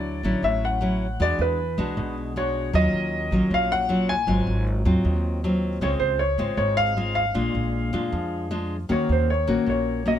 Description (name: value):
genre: bossa nova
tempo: 156 BPM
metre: 4/4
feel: straight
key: unclear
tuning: A4 = 440 Hz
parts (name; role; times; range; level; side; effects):
- warm concert grand piano; melody; 0.0-10.1 s; B4 to Ab5; -25 LUFS; equal; plate reverb
- nylon-string guitar; accompaniment; 0.0-10.2 s; Ab2 to F#4; -25 LUFS; left 1 dB; none
- upright bass; bass; 0.0-10.2 s; Ab1 to F2; -27 LUFS; right 1 dB; none
room: light reverb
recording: none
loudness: -21 LUFS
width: side -10 dB against mid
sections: 0.0-10.2 A section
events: none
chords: 0.0 Dmaj9; 1.2 E9; 2.7 Ebm9; 4.3 Ab6; 5.8 Dbmaj7; 7.4 Bb7; 8.9 Ebm7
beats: 0.04 0.43 0.81 | 1.20 1.58 1.97 2.35 | 2.73 3.12 3.50 3.89 | 4.27 4.66 5.04 5.43 | 5.81 6.20 6.58 6.97 | 7.35 7.74 8.12 8.51 | 8.89 9.28 9.66 10.05